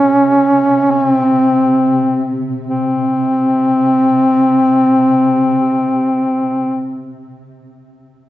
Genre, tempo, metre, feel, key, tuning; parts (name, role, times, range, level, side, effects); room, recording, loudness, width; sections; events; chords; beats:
caucasian folk, Caucasian lament; free time; A4 = 440 Hz
mellow duduk; melody; 0.0-7.0 s; C4 to Db4; -11 LUFS; equal
shimmering ambient pad; drone; 0.0-7.0 s; C3; -24 LUFS; equal; chorus, built-in reverb
wet recital hall reverb, RT60 1.3 s; dark, warm production, nothing above 7.9 kHz; -11 LUFS; side -14 dB against mid
0.0-2.7 A section; 2.7-7.0 B section
slowing down 0.0-2.7
free time